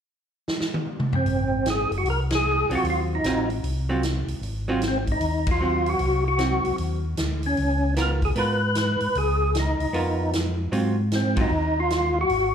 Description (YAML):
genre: soul jazz organ trio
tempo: 152 BPM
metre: 4/4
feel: swing 65% on 8ths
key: Ab mixolydian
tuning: A4 = 444 Hz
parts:
  - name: swinging big-band drum kit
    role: drums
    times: 0.5-12.4 s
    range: hi-hat, kick drum, ride cymbal, snare drum, toms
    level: -29 LUFS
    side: equal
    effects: none
  - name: percussive tonewheel organ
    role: melody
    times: 1.2-12.5 s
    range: C4 to Cb5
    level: -24 LUFS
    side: equal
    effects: slow rotary speaker, overdrive, chorus vibrato, slapback echo
  - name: mellow tonewheel organ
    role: bass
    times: 1.3-12.5 s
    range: Gb1 to Ab2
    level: -26 LUFS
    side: equal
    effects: chorus vibrato, slow rotary speaker
  - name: archtop guitar, miked and amplified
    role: accompaniment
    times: 2.7-11.5 s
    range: Gb3 to Bb4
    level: -28 LUFS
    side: right 3 dB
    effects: slapback echo
room: light reverb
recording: live gig heard through the venue's PA, club reverb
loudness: -21 LUFS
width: side -8 dB against mid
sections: 0.0-1.3 A section; 1.3-12.5 B section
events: drum fill 0.5-1.3; band accent 2.2, 5.4, 11.3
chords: 0.0 N.C.; 1.3 Ab6; 7.6 Db13; 10.7 Ab6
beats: 0.07 0.47 0.86 | 1.26 1.65 2.05 2.44 | 2.84 3.23 3.63 4.02 | 4.42 4.81 5.21 5.60 | 5.99 6.39 6.78 7.18 | 7.57 7.96 8.36 8.75 | 9.15 9.54 9.93 10.33 | 10.72 11.11 11.51 11.90 | 12.29